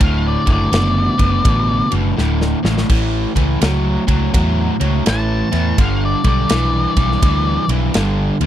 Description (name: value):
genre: blues rock power trio and southern rock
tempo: 83 BPM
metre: 4/4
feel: swing 64% on 8ths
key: D major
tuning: A4 = 440 Hz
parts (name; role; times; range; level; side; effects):
- octave-fuzz lead guitar; melody; 0.0-7.7 s; D5 to A5; -22 LUFS; left 2 dB; distortion
- crunchy overdriven guitar; riff; 0.0-8.5 s; D2 to F#3; -18 LUFS; equal; none
- vintage muted fingered electric bass; bass; 0.0-8.5 s; D1 to E2; -18 LUFS; equal; none
- big rock drum kit; drums; 0.0-8.5 s; crash cymbal, kick drum, ride cymbal, snare drum; -18 LUFS; equal; none
room: little or no reverb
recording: dry, close 1970s-style studio recording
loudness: -14 LUFS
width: side -11 dB against mid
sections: 0.0-8.5 A section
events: lead electric guitar solo 0.0-8.5; drum fill 2.2-2.9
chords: 0.0 D; 2.9 A; 5.8 G